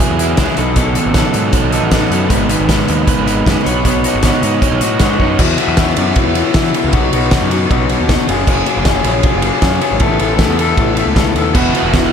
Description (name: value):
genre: indie rock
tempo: 156 BPM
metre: 4/4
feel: straight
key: E major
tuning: A4 = 440 Hz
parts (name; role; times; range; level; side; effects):
- crunchy overdriven guitar; riff; 0.0-5.4, 11.5-12.1 s; E2 to C#5; -18 LUFS; right 9 dB; lush chorus, diffuse ambient delay
- electric guitar through a small old amp; riff; 0.0-12.1 s; E2 to C#5; -16 LUFS; left 7 dB; none
- loose indie drum kit; drums; 0.0-12.0 s; crash cymbal, hi-hat, kick drum, ride cymbal, snare drum; -15 LUFS; right 1 dB; none
- fuzz picked electric bass; bass; 0.1-12.1 s; E1 to E3; -18 LUFS; equal; overdrive
room: light reverb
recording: none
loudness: -11 LUFS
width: side -7 dB against mid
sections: 0.0-5.4 A section; 5.4-12.1 B section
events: drum fill 5.2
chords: 0.0 Eadd9; 0.6 B7; 2.3 G#m; 3.7 Badd9; 5.4 Esus2; 6.9 B; 8.3 F#add9; 10.0 Asus2; 11.6 Esus2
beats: 0.01 0.39 | 0.78 1.16 1.54 1.93 | 2.31 2.70 3.08 3.47 | 3.85 4.24 4.62 5.01 | 5.39 5.78 6.16 6.55 | 6.93 7.32 7.70 8.09 | 8.47 8.86 9.24 9.63 | 10.01 10.40 10.78 11.17 | 11.55 11.94